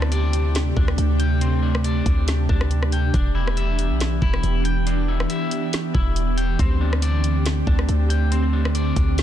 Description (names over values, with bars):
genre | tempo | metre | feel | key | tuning
hip hop, atmospheric cloud-rap | 139 BPM | 4/4 | half-time | unclear | A4 = 441 Hz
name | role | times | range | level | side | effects
ethereal airy pad | sustained chords | 0.0-9.2 s | C3 to G4 | -25 LUFS | right 1 dB | ensemble chorus, built-in reverb, sidechain pumping
electric guitar at the edge of break-up | arpeggios | 0.0-9.2 s | C4 to G5 | -29 LUFS | left 4 dB | tape echo
warm 808-style bass | bass | 0.0-9.2 s | E1 to D2 | -20 LUFS | equal | none
smooth R&B drum kit | drums | 0.0-9.2 s | hi-hat, kick drum, rim click, snare drum | -23 LUFS | equal | vintage 12-bit sampler grit, soft clipping on snare
room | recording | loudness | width
digital ambience | dense, heavily limited modern master | -18 LUFS | side -11 dB against mid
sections
0.0-9.2 A section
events
none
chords
0.0 D7sus4; 3.1 Em7; 6.6 D7sus4